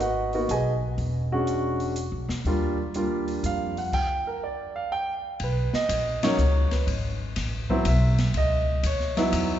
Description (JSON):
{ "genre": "jazz piano trio", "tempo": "122 BPM", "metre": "3/4", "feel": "swing 68% on 8ths", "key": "B major from 5.4 s", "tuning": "A4 = 440 Hz", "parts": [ { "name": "warm concert grand piano", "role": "melody", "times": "0.0-9.6 s", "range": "F#3 to Ab5", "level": "-26 LUFS", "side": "right 1 dB", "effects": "none" }, { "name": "upright bass", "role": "bass", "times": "0.0-9.6 s", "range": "E1 to F2", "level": "-26 LUFS", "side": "equal", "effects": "none" }, { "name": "open jazz drum kit", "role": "drums", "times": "0.0-9.5 s", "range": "crash cymbal, hi-hat, kick drum, ride cymbal, snare drum", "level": "-33 LUFS", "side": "left 2 dB", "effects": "none" } ], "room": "wet church reverb, RT60 2.8 s", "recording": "recorded in a church or concert hall, nothing above 7.8 kHz", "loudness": "-23 LUFS", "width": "side -11 dB against mid", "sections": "0.0-5.4 A section; 5.4-9.6 B section", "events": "stop 3.9-5.4; band accent 6.1", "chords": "0.0 Abm7; 1.0 E13; 2.5 Ebmaj9; 3.9 N.C.; 5.4 Bmaj9; 6.9 G#aug; 8.3 C#m11" }